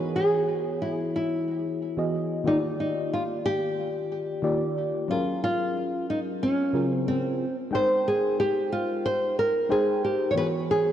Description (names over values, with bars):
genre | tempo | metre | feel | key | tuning
chillout | 91 BPM | 4/4 | swing 55% on 16ths | unclear | A4 = 438 Hz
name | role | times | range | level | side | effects
mellow FM electric piano | accompaniment | 0.0-10.9 s | Db3 to G5 | -28 LUFS | left 1 dB | chorus, auto-pan
nylon-string guitar | melody | 0.2-10.9 s | C4 to Db5 | -25 LUFS | equal | tape echo
room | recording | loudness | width
moderate lush hall reverb, RT60 3.1 s | worn, warbling old tape, cassette tape, warbly pitch drift, nothing above 10.8 kHz | -24 LUFS | side -10 dB against mid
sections
0.0-10.9 A section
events
none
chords
0.0 Emaj9; 2.5 Ebmaj9; 5.1 Gbmaj9; 7.4 Abmaj9; 10.4 Eadd9